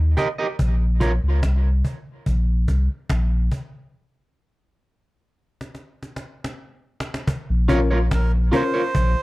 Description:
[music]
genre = dub reggae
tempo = 72 BPM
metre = 4/4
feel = straight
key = Bb dorian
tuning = A4 = 440 Hz
[part]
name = warm sub bass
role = bass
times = 0.0-9.2 s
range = Bb1 to Eb2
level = -18 LUFS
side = equal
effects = none
[part]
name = electric guitar at the edge of break-up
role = accompaniment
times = 0.2-1.1, 7.7-8.8 s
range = F4 to Eb5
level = -25 LUFS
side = right 2 dB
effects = tape echo
[part]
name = cajon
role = drums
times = 0.2-9.1 s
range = none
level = -27 LUFS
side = equal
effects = none
[part]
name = warm upright piano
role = stabs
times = 7.7-8.8 s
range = Db4 to Bb4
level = -25 LUFS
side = left 4 dB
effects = tape echo
[part]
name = melodica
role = melody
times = 8.1-9.2 s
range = Bb4 to C5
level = -25 LUFS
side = right 4 dB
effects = tape echo
[sound]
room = little or no reverb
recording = dry, close 1970s-style studio recording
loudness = -19 LUFS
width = side -20 dB against mid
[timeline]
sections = 0.0-7.3 A section; 7.3-9.2 B section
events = break 0.6-7.3; drum fill 5.6-7.3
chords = 0.0 Eb; 0.6 N.C.; 7.3 Bbm

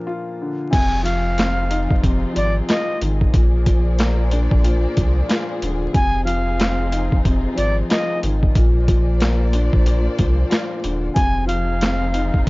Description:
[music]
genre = hip hop, boom-bap hip-hop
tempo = 92 BPM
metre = 4/4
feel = swing 62% on 16ths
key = F dorian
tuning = A4 = 438 Hz
[part]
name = dark upright piano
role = accompaniment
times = 0.0-12.5 s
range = Bb2 to F4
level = -25 LUFS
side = left 2 dB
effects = cassette tape, high-pass filter, low-pass filter
[part]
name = bright reedy silver concert flute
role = melody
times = 0.7-12.4 s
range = D5 to Ab5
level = -24 LUFS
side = equal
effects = high-pass filter, low-pass filter, analog delay
[part]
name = dark studio string section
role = sustained chords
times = 0.7-12.5 s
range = F3 to D5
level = -29 LUFS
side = left 1 dB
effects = high-pass filter, low-pass filter
[part]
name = warm sub bass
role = bass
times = 0.7-12.5 s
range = Eb1 to C2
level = -20 LUFS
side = equal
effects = none
[part]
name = boom bap sampler-style drum kit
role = drums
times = 0.7-12.5 s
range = crash cymbal, handclaps, hi-hat, kick drum, snare drum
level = -19 LUFS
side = equal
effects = overdrive
[sound]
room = little or no reverb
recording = dry, gritty hardware recording, vinyl crackle, nothing above 7.5 kHz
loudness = -16 LUFS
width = side -23 dB against mid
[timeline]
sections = 0.7-12.5 A section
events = break 0.0-0.7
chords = 0.0 Bb; 0.7 Fm7; 3.3 Bb7; 5.9 Fm7; 8.6 Bb7; 11.2 Fm7

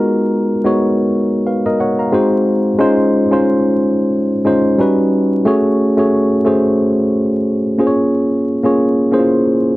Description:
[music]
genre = R&B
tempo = 90 BPM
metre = 4/4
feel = swing 57% on 16ths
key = Db major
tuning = A4 = 440 Hz
[part]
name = tine electric piano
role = solo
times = 0.0-9.8 s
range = G3 to Bb5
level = -12 LUFS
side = equal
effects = none
[sound]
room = light reverb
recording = dry, close 1970s-style studio recording, vinyl crackle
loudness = -12 LUFS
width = side -18 dB against mid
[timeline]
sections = 0.0-5.4 A section; 5.4-9.8 B section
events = none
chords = 0.0 Abm9; 2.1 Ab7; 2.8 Dbmaj9; 4.8 Eb7alt; 5.4 Gbmadd9; 7.8 Db6

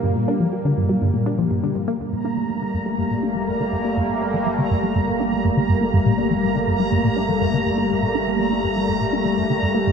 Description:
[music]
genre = ambient, sequencer-driven space music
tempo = 122 BPM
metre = 4/4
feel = straight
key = G minor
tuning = A4 = 440 Hz
[part]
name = sweeping resonant pad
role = sustained chords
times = 0.0-9.9 s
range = Bb2 to C4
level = -21 LUFS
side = left 1 dB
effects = chorus
[part]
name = resonant blip pluck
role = riff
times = 0.0-9.9 s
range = G2 to D4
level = -22 LUFS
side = equal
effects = phaser, ping-pong delay
[part]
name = fat analog bass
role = bass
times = 2.0-9.9 s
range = G1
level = -38 LUFS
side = equal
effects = none
[part]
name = bubbling stepped-filter texture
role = texture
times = 2.0-9.9 s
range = Bb5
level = -27 LUFS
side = right 3 dB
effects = chorus, built-in reverb
[sound]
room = wet huge ambient reverb, RT60 7.7 s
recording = dreamy mix soaked in reverb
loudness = -18 LUFS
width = side -6 dB against mid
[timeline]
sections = 0.0-2.0 A section; 2.0-9.9 B section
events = fade-in on analog synth bass 2.0-9.9; filter sweep on synth arpeggio sound 2.0-9.9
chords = 0.0 Gm; 2.0 Gmadd9

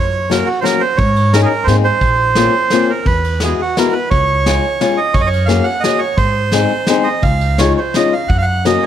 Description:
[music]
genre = musette waltz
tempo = 173 BPM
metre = 3/4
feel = rubato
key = Db major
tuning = A4 = 436 Hz
[part]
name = bandoneon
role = melody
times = 0.0-8.9 s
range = Gb4 to Gb5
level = -16 LUFS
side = right 4 dB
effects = none
[part]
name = upright bass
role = bass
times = 0.0-8.8 s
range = Bb1 to Ab2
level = -17 LUFS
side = right 1 dB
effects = none
[part]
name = fingerpicked acoustic archtop guitar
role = accompaniment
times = 0.3-8.8 s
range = Gb3 to Ab4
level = -17 LUFS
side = left 7 dB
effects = none
[part]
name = soft brush drum kit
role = drums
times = 0.3-8.7 s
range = kick drum, ride cymbal, snare drum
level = -20 LUFS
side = equal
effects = none
[sound]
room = light reverb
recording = none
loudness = -12 LUFS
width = side -10 dB against mid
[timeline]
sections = 0.0-8.9 A section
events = none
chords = 0.0 Gb; 1.0 Absus4; 1.7 Abadd9; 2.0 Bbmadd9; 3.1 Eadd9; 4.1 Db; 5.2 Gbadd9; 6.2 Ab; 7.2 Dbadd9; 8.3 Gb

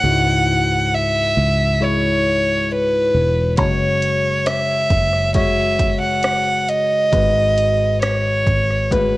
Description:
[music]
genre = pop ballad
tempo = 68 BPM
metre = 4/4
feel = straight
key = C# minor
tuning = A4 = 440 Hz
[part]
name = rich violin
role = melody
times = 0.0-9.2 s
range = B4 to F#5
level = -17 LUFS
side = right 1 dB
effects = cassette tape
[part]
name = bell-like tine electric piano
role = accompaniment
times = 0.0-9.2 s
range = G#2 to C#5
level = -22 LUFS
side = left 3 dB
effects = phaser, cassette tape
[part]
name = fingered electric bass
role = bass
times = 0.0-9.2 s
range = E1 to C#2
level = -22 LUFS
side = right 1 dB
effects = none
[part]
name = punchy analog drum machine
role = drums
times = 3.6-9.1 s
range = hi-hat, kick drum, rim click, toms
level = -22 LUFS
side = right 1 dB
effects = cassette tape
[sound]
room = light reverb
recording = home recording on cassette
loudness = -15 LUFS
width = side -18 dB against mid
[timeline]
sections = 0.0-9.2 A section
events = drum fill 8.9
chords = 0.0 C#m; 3.6 F#sus2; 7.1 G#m7

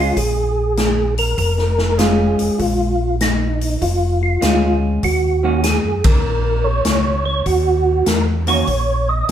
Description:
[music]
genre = soul jazz organ trio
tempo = 99 BPM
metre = 4/4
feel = swing 67% on 8ths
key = Bb minor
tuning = A4 = 441 Hz
[part]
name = percussive tonewheel organ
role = melody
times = 0.0-9.3 s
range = Eb4 to Eb5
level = -19 LUFS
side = right 2 dB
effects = chorus vibrato, fast rotary speaker
[part]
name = vintage hollow-body jazz guitar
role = accompaniment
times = 0.0-8.7 s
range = Eb3 to Gb4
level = -20 LUFS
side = right 1 dB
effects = none
[part]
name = mellow tonewheel organ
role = bass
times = 0.0-9.3 s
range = F1 to Gb2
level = -20 LUFS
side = equal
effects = slow rotary speaker
[part]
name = swinging big-band drum kit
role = drums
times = 0.2-9.3 s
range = hi-hat, kick drum, ride cymbal, snare drum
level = -20 LUFS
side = left 2 dB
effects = none
[sound]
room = moderate large studio reverb, RT60 1.2 s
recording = band playing live in one room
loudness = -15 LUFS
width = side -10 dB against mid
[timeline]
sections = 0.0-9.3 A section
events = band accent 5.9-6.2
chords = 0.0 Bbm7; 5.0 Ebm7

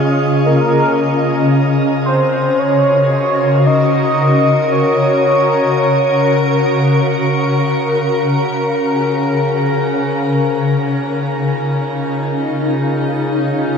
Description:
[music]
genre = ambient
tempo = free time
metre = none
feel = none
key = Db major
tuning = A4 = 440 Hz
[part]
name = granular cloud pad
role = sustained chords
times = 0.0-13.8 s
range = Db3 to Eb5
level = -14 LUFS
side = left 1 dB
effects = built-in reverb
[part]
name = warm velvety synth lead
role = melody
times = 0.5-13.8 s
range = F4 to Eb5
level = -18 LUFS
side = right 1 dB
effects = chorus, tremolo, ping-pong delay
[part]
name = pedal harmonium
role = drone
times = 8.9-13.8 s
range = Db3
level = -22 LUFS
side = equal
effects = none
[sound]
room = wet shimmer reverb, RT60 8.0 s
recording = none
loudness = -12 LUFS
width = side -6 dB against mid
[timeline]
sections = 0.0-8.9 A section; 8.9-13.8 B section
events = filter sweep on ambient pad 0.0-8.9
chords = 0.5 Gb/Db; 8.9 Dbmaj7

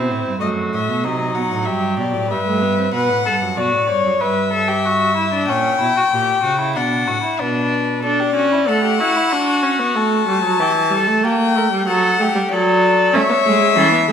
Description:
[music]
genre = classical, baroque-style fugue for string quartet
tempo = 94 BPM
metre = 4/4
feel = straight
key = D major from 8.0 s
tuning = A4 = 435 Hz
[part]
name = warm violin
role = melody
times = 0.0-14.1 s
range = B4 to A5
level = -19 LUFS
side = left 7 dB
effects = none
[part]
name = dark violin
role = second line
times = 0.0-13.9 s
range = C#4 to C#5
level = -20 LUFS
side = left 1 dB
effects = none
[part]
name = warm viola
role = accompaniment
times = 0.0-2.8, 8.0-14.1 s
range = E3 to E4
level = -19 LUFS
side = right 3 dB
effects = none
[part]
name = rich cello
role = bass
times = 0.0-8.0, 13.1-14.1 s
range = F#2 to A3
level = -22 LUFS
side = right 5 dB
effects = none
[sound]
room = wet recital hall reverb, RT60 1.4 s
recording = none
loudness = -15 LUFS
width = side -8 dB against mid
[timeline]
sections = 0.0-8.0 A section; 8.0-14.1 B section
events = none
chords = 0.4 D#dim7/F#; 1.7 Em/G; 2.9 Bm; 4.2 Gmaj13; 5.5 A#dim7; 6.8 Bm; 8.0 D; 9.3 F#madd11; 10.6 Emadd11; 11.9 D/F#; 13.1 A

